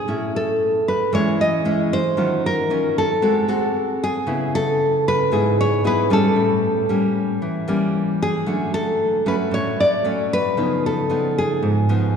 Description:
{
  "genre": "bossa nova",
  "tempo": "114 BPM",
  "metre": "4/4",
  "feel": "straight",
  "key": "C# minor",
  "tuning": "A4 = 441 Hz",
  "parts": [
    { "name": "nylon-string guitar", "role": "melody", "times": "0.0-12.2 s", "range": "G#4 to D#5", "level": "-20 LUFS", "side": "equal", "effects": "none" },
    { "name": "nylon-string guitar", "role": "accompaniment", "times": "0.0-12.2 s", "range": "G#2 to A4", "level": "-20 LUFS", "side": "equal", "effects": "none" }
  ],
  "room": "wet church reverb, RT60 2.7 s",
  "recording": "recorded in a church or concert hall",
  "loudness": "-17 LUFS",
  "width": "side -7 dB against mid",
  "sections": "0.0-12.2 A section",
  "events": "none",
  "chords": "0.1 Amaj7; 2.2 D#m9; 3.2 G#7b9; 4.3 C#m7; 6.4 A7b9; 8.5 Dmaj7; 10.6 C#9",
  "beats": "| 0.08 0.60 1.12 1.65 | 2.17 2.70 3.22 3.75 | 4.27 4.79 5.32 5.84 | 6.37 6.89 7.42 7.94 | 8.47 9.00 9.52 10.05 | 10.57 11.10 11.63 12.15"
}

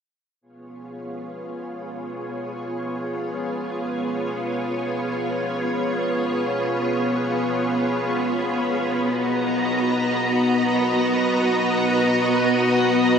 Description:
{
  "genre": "ambient, sequencer-driven space music",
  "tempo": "free time",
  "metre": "none",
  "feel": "none",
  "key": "unclear",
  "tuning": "A4 = 439 Hz",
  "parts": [
    { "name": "string machine, full ensemble", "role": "sustained chords", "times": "0.7-13.2 s", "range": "B3 to A#5", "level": "-21 LUFS", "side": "equal", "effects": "ensemble chorus" },
    { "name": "wind-like tuned noise texture", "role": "texture", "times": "1.2-13.2 s", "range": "B3 to B4", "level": "-29 LUFS", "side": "equal", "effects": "built-in reverb" }
  ],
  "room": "wet huge ambient reverb, RT60 7.8 s",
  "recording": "cassette tape",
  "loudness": "-20 LUFS",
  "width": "side -7 dB against mid",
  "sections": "0.4-13.2 A section",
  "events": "fade-in on string machine 0.4-13.2; fade-in on synth texture 0.4-13.2",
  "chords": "0.4 C#7; 9.0 Bmaj7",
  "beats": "free time"
}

